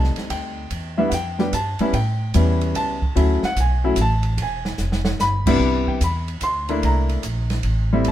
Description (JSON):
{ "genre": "jazz, small-group swing and bop", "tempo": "147 BPM", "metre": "3/4", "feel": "swing 66% on 8ths", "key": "unclear", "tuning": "A4 = 438 Hz", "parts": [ { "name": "warm baby grand piano", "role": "accompaniment", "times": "0.0-8.1 s", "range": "C3 to C6", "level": "-21 LUFS", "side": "left 1 dB", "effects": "none" }, { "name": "upright bass", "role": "bass", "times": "0.0-8.1 s", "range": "E1 to A2", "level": "-21 LUFS", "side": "equal", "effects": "none" }, { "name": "open jazz drum kit", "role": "drums", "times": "0.0-8.1 s", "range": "crash cymbal, hi-hat, kick drum, ride cymbal, snare drum", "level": "-28 LUFS", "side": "right 2 dB", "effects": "none" } ], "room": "light reverb", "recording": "minimal, uncompressed stereo recording", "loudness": "-18 LUFS", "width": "side -12 dB against mid", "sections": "0.0-5.6 A section; 5.6-8.1 A section", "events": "drum fill 4.8-5.2", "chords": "0.0 F9 (rootless); 0.7 Em7; 1.9 A7; 3.2 Dmaj9; 4.4 E; 5.2 G; 5.6 Cmaj7; 6.8 C13" }